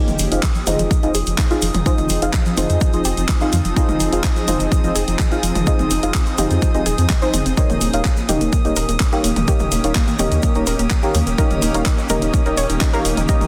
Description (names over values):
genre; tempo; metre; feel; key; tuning
progressive house; 126 BPM; 4/4; straight; F minor; A4 = 440 Hz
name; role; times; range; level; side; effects
shimmering ambient pad; sustained chords; 0.0-13.5 s; Eb3 to Ab4; -29 LUFS; equal; chorus, built-in reverb, sidechain pumping
analog pluck; arpeggios; 0.0-13.5 s; Eb3 to Db5; -28 LUFS; equal; chorus, cassette tape, sidechain pumping, digital delay
deep mellow chord stab; stabs; 0.0-13.5 s; Eb4 to F5; -25 LUFS; equal; chorus, phaser, sidechain pumping, digital delay
drifting glass-harmonics texture; texture; 0.3-13.5 s; Eb6; -34 LUFS; equal; chorus, built-in reverb, sidechain pumping
round analog bass; bass; 0.1-13.5 s; Eb1 to F2; -24 LUFS; equal; sidechain pumping
house drum kit; drums; 0.1-13.5 s; handclaps, hi-hat; -29 LUFS; equal; none
egg shaker; percussion; 0.1-13.5 s; none; -33 LUFS; equal; none
electronic toms and congas; percussion; 0.1-13.5 s; none; -29 LUFS; equal; sidechain pumping on toms, sidechain pumping on perc
electronic kick drum; drums; 0.4-13.4 s; none; -20 LUFS; equal; none
room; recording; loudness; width
light reverb; dense, heavily limited modern master; -18 LUFS; mono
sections
0.0-13.5 A section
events
filter sweep on synth pluck 0.0-13.5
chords
0.0 Fm7; 7.6 Eb7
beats
0.43 0.91 1.38 | 1.86 2.34 2.81 3.29 | 3.77 4.24 4.72 5.19 | 5.67 6.15 6.62 7.10 | 7.57 8.05 8.53 9.00 | 9.48 9.96 10.43 10.91 | 11.38 11.86 12.34 12.81 | 13.29